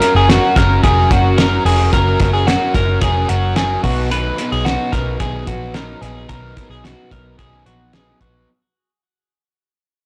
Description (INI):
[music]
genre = jangly indie pop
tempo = 110 BPM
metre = 4/4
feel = straight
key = unclear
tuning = A4 = 440 Hz
[part]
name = crunchy overdriven guitar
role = accompaniment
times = 0.0-8.5 s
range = B2 to B4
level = -24 LUFS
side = equal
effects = none
[part]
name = twelve-string electric guitar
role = arpeggios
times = 0.0-8.5 s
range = F#4 to B4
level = -21 LUFS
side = equal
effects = none
[part]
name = cloth-damped thuddy drum kit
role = drums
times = 0.0-8.3 s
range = hi-hat, kick drum, snare drum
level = -20 LUFS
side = equal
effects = soft clipping on kick
[part]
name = vintage muted picked electric bass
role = bass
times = 0.1-8.4 s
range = E#1 to B1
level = -20 LUFS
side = equal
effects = none
[sound]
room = light reverb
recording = blown-out, overdriven recording, overdrive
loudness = -15 LUFS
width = mono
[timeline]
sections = 0.0-8.5 A section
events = fade-out 0.0-8.5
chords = 0.0 F#; 3.8 B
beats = 0.29 0.83 1.38 | 1.92 2.47 3.02 3.56 | 4.11 4.66 5.20 5.75 | 6.30 6.84 7.39 7.94